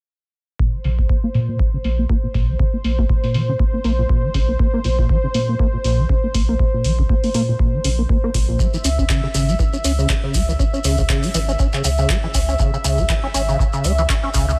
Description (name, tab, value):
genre	acid house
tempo	120 BPM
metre	4/4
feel	swing 57% on 16ths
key	unclear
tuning	A4 = 440 Hz
part	warm analog pad	sustained chords	0.6-14.6 s	C5 to Fb5	-29 LUFS	equal	chorus, sidechain pumping
part	deep acid bass	riff	0.6-14.5 s	Bb2 to Db4	-25 LUFS	equal	tube saturation, lush chorus, sidechain pumping, delay
part	electronic kick drum	drums	0.6-14.5 s	none	-21 LUFS	equal	none
part	saturated sub bass	bass	0.8-14.6 s	Ab1 to Bb2	-22 LUFS	equal	tube saturation, sidechain pumping
part	punchy analog drum machine	drums	0.8-14.5 s	handclaps, hi-hat	-29 LUFS	equal	low-pass filter on hats, low-pass filter on snare, low-pass filter on room
part	shekere	percussion	8.6-14.6 s	none	-32 LUFS	equal	none
room	little or no reverb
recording	none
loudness	-19 LUFS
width	mono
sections	0.6-14.6 A section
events	filter sweep on acid bass 0.6-14.6; filter sweep on sub bass 0.6-14.6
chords	0.6 N.C.; 8.6 Dbm